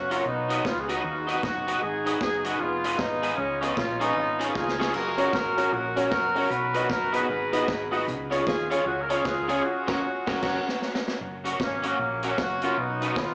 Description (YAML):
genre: ska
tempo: 153 BPM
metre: 4/4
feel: swing 61% on 8ths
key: F# major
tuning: A4 = 440 Hz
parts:
  - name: mellow horn section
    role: melody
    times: 0.0-13.3 s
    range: F#3 to B4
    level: -29 LUFS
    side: equal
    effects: tape echo, slapback echo
  - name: hollow-body short-scale fingered electric bass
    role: bass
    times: 0.0-13.3 s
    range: E#1 to D#2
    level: -41 LUFS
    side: equal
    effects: none
  - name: electric guitar at the edge of break-up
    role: accompaniment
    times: 0.1-13.1 s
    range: B3 to D#5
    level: -33 LUFS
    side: equal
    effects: ensemble chorus, tape echo, slapback echo
  - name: vintage drum kit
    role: drums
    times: 0.1-13.3 s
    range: crash cymbal, hi-hat, kick drum, snare drum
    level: -35 LUFS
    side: equal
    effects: none
  - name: warm upright piano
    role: stabs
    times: 5.2-10.6 s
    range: C#4 to D#5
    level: -32 LUFS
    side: equal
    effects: tape echo, slapback echo
room: light reverb, small room reverb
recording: live gig heard through the venue's PA, club reverb, small speaker sound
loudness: -26 LUFS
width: mono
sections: 0.0-11.2 A section; 11.2-13.3 A section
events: drum fill 4.5-4.9, 10.4-11.2; band accent 9.6-11.2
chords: 0.3 B; 1.8 G#m; 3.4 C#; 4.9 F#; 6.5 B; 8.1 C#; 9.6 F#; 12.8 B